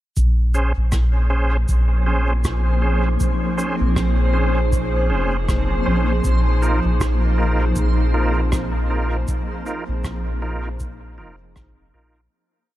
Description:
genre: ambient dub.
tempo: 79 BPM.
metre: 4/4.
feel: swing 59% on 16ths.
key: unclear.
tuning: A4 = 440 Hz.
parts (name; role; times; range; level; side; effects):
granular cloud pad; sustained chords; 1.6-12.3 s; F3 to C5; -25 LUFS; equal; built-in reverb.
soft dub sub bass; bass; 0.2-12.3 s; F1 to Bb1; -19 LUFS; equal; none.
cabasa and rim click; drums; 0.2-11.7 s; none; -33 LUFS; right 1 dB; dub echo.
electronic kick drum; drums; 0.2-11.7 s; none; -24 LUFS; equal; none.
backwards swelling texture; texture; 2.0-12.3 s; C4 to C5; -30 LUFS; equal; built-in reverb.
bright tonewheel organ; stabs; 0.5-12.2 s; Db4 to C5; -26 LUFS; right 2 dB; chorus vibrato, dub echo.
room: light reverb, small room ambience.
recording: none.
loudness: -17 LUFS.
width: side -14 dB against mid.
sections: 0.2-12.3 groove.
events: fade-out 8.3-12.3.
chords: 0.2 Bbm9; 6.2 Ebsus2/Bb.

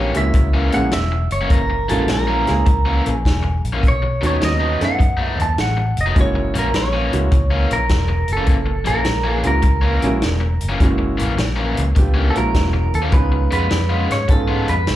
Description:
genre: electric blues shuffle.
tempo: 103 BPM.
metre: 4/4.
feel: swing 67% on 8ths.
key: F# mixolydian.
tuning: A4 = 440 Hz.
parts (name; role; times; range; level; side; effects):
clean electric guitar; melody; 0.0-15.0 s; A4 to A5; -22 LUFS; right 2 dB; slapback echo.
clear grand piano; accompaniment; 0.0-14.6 s; G#3 to A4; -23 LUFS; right 2 dB; slapback echo.
raw garage guitar; riff; 0.0-14.7 s; F#2 to E#4; -24 LUFS; left 4 dB; overdrive, slapback echo.
vintage muted fingered electric bass; bass; 0.0-15.0 s; E1 to G#2; -20 LUFS; equal; none.
vintage drum kit; drums; 0.1-15.0 s; hi-hat, kick drum, snare drum; -19 LUFS; equal; none.
room: light reverb.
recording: live gig heard through the venue's PA, club reverb.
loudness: -15 LUFS.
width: side -14 dB against mid.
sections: 0.0-15.0 A section.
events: none.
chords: 0.0 F#7; 3.8 B7; 6.2 F#7; 13.1 C#7.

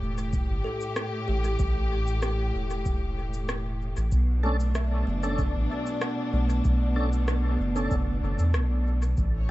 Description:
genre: ambient dub.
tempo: 95 BPM.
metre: 4/4.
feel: straight.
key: B minor.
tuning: A4 = 440 Hz.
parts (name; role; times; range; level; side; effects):
warm studio string section; sustained chords; 0.0-9.5 s; A2 to C#5; -32 LUFS; equal; none.
kalimba; arpeggios; 0.0-8.5 s; F#3 to F#5; -37 LUFS; right 1 dB; tape echo.
soft dub sub bass; bass; 0.0-9.5 s; E1 to E2; -26 LUFS; equal; none.
electronic cabasa and rim click; drums; 0.2-9.3 s; none; -36 LUFS; equal; overdrive, dub echo.
electronic kick drum; drums; 0.3-9.3 s; none; -29 LUFS; equal; none.
tonewheel organ; stabs; 4.4-8.0 s; C#4 to A4; -35 LUFS; right 1 dB; overdrive, chorus vibrato, slow rotary speaker, low-pass filter, dub echo.
room: digital ambience.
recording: vinyl crackle, nothing above 7.9 kHz.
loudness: -24 LUFS.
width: side -17 dB against mid.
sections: 0.0-9.5 A section.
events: none.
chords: 0.0 A5; 4.1 Bm9.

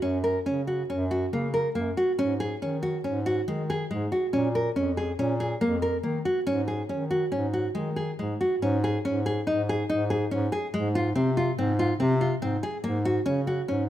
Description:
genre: contemporary instrumental, chamber music in an uneven meter.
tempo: 140 BPM.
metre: 5/4.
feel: straight.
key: Ab mixolydian.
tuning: A4 = 440 Hz.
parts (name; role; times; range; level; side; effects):
nylon-string guitar; arpeggios; 0.0-13.8 s; Ab3 to Bb4; -26 LUFS; equal; none.
breathy bass clarinet; bass; 0.0-13.9 s; F2 to Eb3; -29 LUFS; left 1 dB; none.
room: light reverb.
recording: close, detailed microphones.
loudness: -24 LUFS.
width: side -12 dB against mid.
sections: 0.0-8.6 A section; 8.6-13.9 B section.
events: none.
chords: 0.0 Gb; 2.2 Ab7sus4; 4.3 Bbm7; 6.5 Ab7sus4; 8.6 Dbsus2/Ab; 10.7 Fm/Ab; 12.8 Gb/Ab.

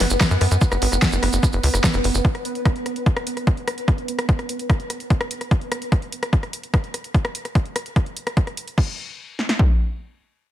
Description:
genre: psychedelic trance.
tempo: 147 BPM.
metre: 4/4.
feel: straight.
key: unclear.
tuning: A4 = 439 Hz.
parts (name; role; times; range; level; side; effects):
pulsing gated texture; sustained chords; 0.0-5.5 s; B3 to B4; -27 LUFS; right 2 dB; chorus, built-in reverb, sidechain pumping.
tight sequencer bass; bass; 0.0-2.2 s; F#1 to F#2; -20 LUFS; equal; none.
big-room dance drum kit; drums; 0.0-8.9 s; crash cymbal, hi-hat, rim click, snare drum; -26 LUFS; left 1 dB; overdrive.
maracas; percussion; 0.1-2.2 s; none; -29 LUFS; right 4 dB; none.
big-room dance drum kit; drums; 0.2-9.7 s; kick drum, snare drum; -18 LUFS; equal; overdrive.
room: little or no reverb.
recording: none.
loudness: -19 LUFS.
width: side -12 dB against mid.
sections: 0.0-8.8 A section; 8.8-10.5 B section.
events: filter sweep on synth texture 0.0-5.5.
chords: none.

